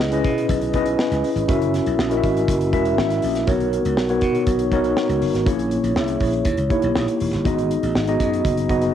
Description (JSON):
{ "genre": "polished 1980s jazz-funk pop", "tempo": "121 BPM", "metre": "4/4", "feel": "straight", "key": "C# minor", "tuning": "A4 = 441 Hz", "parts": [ { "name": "mellow tine electric piano", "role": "accompaniment", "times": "0.0-8.9 s", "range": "A#3 to E5", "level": "-19 LUFS", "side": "left 1 dB", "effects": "medium stereo tremolo, wide subtle chorus, cassette tape" }, { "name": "slap bass", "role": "bass", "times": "0.0-8.9 s", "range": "E1 to B2", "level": "-25 LUFS", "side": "equal", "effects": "none" }, { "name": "modern studio drum kit", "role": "drums", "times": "0.0-8.9 s", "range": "hi-hat, kick drum, snare drum", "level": "-25 LUFS", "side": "equal", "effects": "cassette tape" } ], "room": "light reverb, small room ambience", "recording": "home recording on cassette", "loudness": "-18 LUFS", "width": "side -10 dB against mid", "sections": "0.0-8.9 A section", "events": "none", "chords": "0.0 C#m9; 1.5 F#7; 3.5 Bmaj9; 5.5 A#m7b5; 6.5 D#7b9; 7.5 G#m7", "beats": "0.00 0.50 0.99 | 1.49 1.99 2.49 2.98 | 3.48 3.98 4.47 4.97 | 5.47 5.96 6.46 6.96 | 7.45 7.95 8.45" }